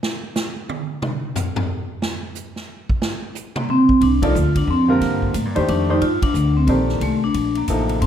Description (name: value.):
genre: modal jazz.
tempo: 180 BPM.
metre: 3/4.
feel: swing 63% on 8ths.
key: C dorian.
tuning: A4 = 439 Hz.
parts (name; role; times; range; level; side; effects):
swinging big-band drum kit; drums; 0.0-8.1 s; hi-hat, kick drum, ride cymbal, snare drum, toms; -25 LUFS; right 1 dB; none.
vibraphone with medium hard mallets; melody; 3.6-8.1 s; A3 to F4; -18 LUFS; equal; none.
upright bass; bass; 4.0-8.1 s; F1 to A2; -21 LUFS; left 1 dB; none.
warm concert grand piano; accompaniment; 4.2-8.0 s; C3 to D5; -22 LUFS; equal; none.
room: light reverb.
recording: none.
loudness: -17 LUFS.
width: side -9 dB against mid.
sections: 0.0-4.0 A section; 4.0-8.1 B section.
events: drum solo 0.0-4.0; band accent 4.2, 6.2.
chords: 0.0 N.C.; 4.0 C13sus4.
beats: | 0.03 0.36 0.69 | 1.02 1.36 1.69 | 2.02 2.35 2.68 | 3.02 3.35 3.68 | 4.01 4.34 4.68 | 5.01 5.34 5.68 | 6.01 6.34 6.68 | 7.01 7.34 7.68 | 8.01.